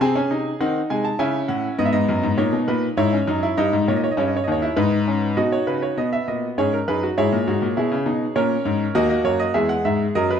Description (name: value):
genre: classical, baroque-style 4-part fugue for grand piano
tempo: 100 BPM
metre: 3/4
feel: straight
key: unclear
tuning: A4 = 440 Hz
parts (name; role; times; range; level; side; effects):
- bright grand piano; solo; 0.0-10.4 s; D#2 to A5; -18 LUFS; equal; none
room: moderate recital hall reverb, RT60 1.7 s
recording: close, detailed microphones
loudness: -18 LUFS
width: side -8 dB against mid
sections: 0.0-5.4 A section; 5.4-10.4 B section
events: none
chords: 0.0 G#7/B#; 1.2 C#m; 1.8 G#m; 3.0 C#m/G#; 3.6 D#7/G; 4.8 G#m; 5.4 B; 6.6 G#m; 7.2 C#m/G#; 8.4 G#sus24; 9.0 D#m; 9.6 Eadd9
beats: | 0.01 0.60 1.19 | 1.79 2.38 2.98 | 3.58 4.18 4.78 | 5.38 5.98 6.58 | 7.18 7.77 8.37 | 8.96 9.55 10.16